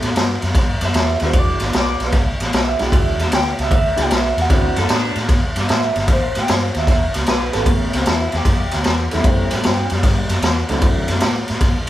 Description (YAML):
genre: electric blues shuffle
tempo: 152 BPM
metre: 4/4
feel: swing 67% on 8ths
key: unclear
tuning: A4 = 440 Hz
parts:
  - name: clear upright piano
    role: accompaniment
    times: 0.0-4.7, 7.5-11.2 s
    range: F#3 to A4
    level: -24 LUFS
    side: equal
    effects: none
  - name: vintage muted fingered electric bass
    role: bass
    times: 0.0-11.8 s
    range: E1 to B2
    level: -23 LUFS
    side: equal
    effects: none
  - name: raw garage drum kit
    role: drums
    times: 0.0-11.9 s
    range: kick drum, ride cymbal, snare drum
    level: -16 LUFS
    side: equal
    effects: none
  - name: electric guitar through a small old amp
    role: melody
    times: 0.9-10.3 s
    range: G3 to G5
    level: -23 LUFS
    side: right 2 dB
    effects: phaser
  - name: electric slide guitar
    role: second line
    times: 4.8-5.2 s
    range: D4 to A4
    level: -26 LUFS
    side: right 2 dB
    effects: none
room: light reverb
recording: band playing live in one room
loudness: -15 LUFS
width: side -14 dB against mid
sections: 0.0-7.7 A section; 7.7-11.9 B section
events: none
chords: 0.0 A7(no3); 1.3 E9; 4.5 D9; 6.1 Am7b5; 6.9 E5; 7.7 A9; 10.8 D9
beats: 0.16 0.55 0.95 | 1.34 1.74 2.13 2.53 | 2.92 3.32 3.71 4.11 | 4.50 4.90 5.29 5.69 | 6.08 6.48 6.88 7.27 | 7.67 8.06 8.46 8.85 | 9.25 9.64 10.04 10.44 | 10.83 11.23 11.62